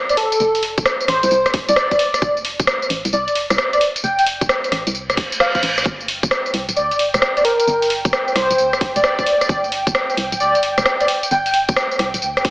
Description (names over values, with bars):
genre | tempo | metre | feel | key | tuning
UK garage, two-step garage | 132 BPM | 4/4 | swing 66% on 16ths | G minor | A4 = 440 Hz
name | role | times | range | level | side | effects
airy dreamy lead | melody | 0.1-11.5 s | A4 to G5 | -17 LUFS | equal | chorus
punchy analog drum machine | drums | 0.1-12.5 s | hi-hat, rim click, tambourine | -18 LUFS | equal | none
organ-like FM bass | bass | 0.4-12.5 s | D1 to D2 | -26 LUFS | equal | tube saturation
electronic kick drum | drums | 0.8-12.5 s | none | -22 LUFS | equal | none
reverse cymbal | sound effects | 5.1-5.9 s | none | -23 LUFS | right 2 dB | none
ethereal airy pad | sustained chords | 6.6-12.5 s | G5 | -25 LUFS | right 1 dB | ensemble chorus, built-in reverb, sidechain pumping
room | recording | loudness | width
light reverb | AM radio sound | -15 LUFS | side -21 dB against mid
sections
0.0-12.5 A section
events
reverse cymbal 5.1-5.9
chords
0.0 F; 5.9 G5